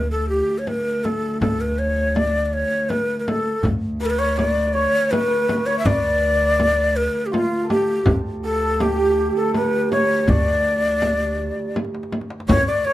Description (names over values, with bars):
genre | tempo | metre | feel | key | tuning
Persian modal ensemble | 81 BPM | 3/4 | straight | D avaz esfahan | A4 = 442 Hz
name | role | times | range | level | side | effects
breathy ney | melody | 0.0-12.9 s | F4 to E5 | -20 LUFS | left 1 dB | none
upright bass | bass | 0.0-12.8 s | D2 | -25 LUFS | equal | none
warm cello | drone | 0.0-12.6 s | D2 | -28 LUFS | equal | none
frame drum | percussion | 0.7-12.7 s | none | -23 LUFS | left 1 dB | none
tombak | percussion | 3.6-12.7 s | none | -28 LUFS | equal | none
santur | second line | 4.0-12.9 s | F4 to D5 | -26 LUFS | right 2 dB | none
room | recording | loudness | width
moderate small room reverb, RT60 0.5 s | lossy compression artefacts | -18 LUFS | side -14 dB against mid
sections
0.0-12.5 A section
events
drum fill 11.8-12.5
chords
none